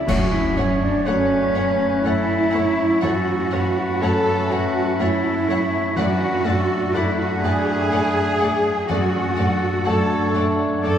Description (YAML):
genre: cinematic, emotional film score for orchestra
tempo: 61 BPM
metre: 3/4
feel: rubato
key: F# minor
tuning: A4 = 440 Hz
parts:
  - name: mellow hollow silver concert flute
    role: second line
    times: 0.0-11.0 s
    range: C#5 to A5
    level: -27 LUFS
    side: equal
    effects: none
  - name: clear grand piano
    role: accompaniment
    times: 0.0-11.0 s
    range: F#2 to F#4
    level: -26 LUFS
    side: left 2 dB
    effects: none
  - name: warm studio cello section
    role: bass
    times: 0.0-11.0 s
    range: C#4 to A4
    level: -22 LUFS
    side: right 1 dB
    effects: none
  - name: dark studio violin section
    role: melody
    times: 0.1-10.9 s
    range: F#5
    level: -36 LUFS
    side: left 3 dB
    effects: none
  - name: clear oboe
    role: second line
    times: 0.1-11.0 s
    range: A4 to D5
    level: -29 LUFS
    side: equal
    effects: none
  - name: dark studio violin section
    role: second line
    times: 0.1-10.9 s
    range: C#5 to D5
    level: -34 LUFS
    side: left 2 dB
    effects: none
  - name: warm studio viola section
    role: accompaniment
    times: 0.1-10.9 s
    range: A3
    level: -31 LUFS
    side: equal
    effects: none
  - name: clear French horn section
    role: sustained chords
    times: 0.1-11.0 s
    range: A3 to D4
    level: -26 LUFS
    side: equal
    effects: none
  - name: dark studio double bass section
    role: bass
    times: 0.1-10.9 s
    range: F#2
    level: -27 LUFS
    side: right 1 dB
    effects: none
  - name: clash cymbals and concert bass drum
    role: percussion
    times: 0.1-2.0 s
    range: none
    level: -28 LUFS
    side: equal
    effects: none
room: wet church reverb, RT60 3.4 s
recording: heard from further back in the room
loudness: -18 LUFS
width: side -9 dB against mid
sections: 0.1-11.0 A section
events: band accent 0.1-1.1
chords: 0.1 F#m; 6.0 D/F#